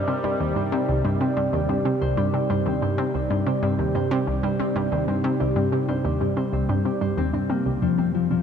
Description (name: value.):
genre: ambient, sequencer-driven space music.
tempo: 93 BPM.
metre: 4/4.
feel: straight.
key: C minor.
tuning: A4 = 441 Hz.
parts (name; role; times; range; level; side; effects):
sweeping resonant pad; sustained chords; 0.0-8.4 s; C3 to D5; -25 LUFS; right 1 dB; chorus, phaser.
concert harp; arpeggios; 0.0-8.4 s; F3 to C5; -29 LUFS; moving between left 8 dB and equal; auto-pan, tape echo.
analog pluck; riff; 0.0-8.4 s; C2 to F3; -24 LUFS; right 1 dB; chorus, tape echo.
warm sub bass; bass; 7.8-8.4 s; F2; -39 LUFS; equal; tube saturation.
room: wet huge ambient reverb, RT60 7.5 s.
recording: none.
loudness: -21 LUFS.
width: side -7 dB against mid.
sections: 0.0-7.8 A section.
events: none.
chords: 0.0 Cm7; 7.8 Fsus2.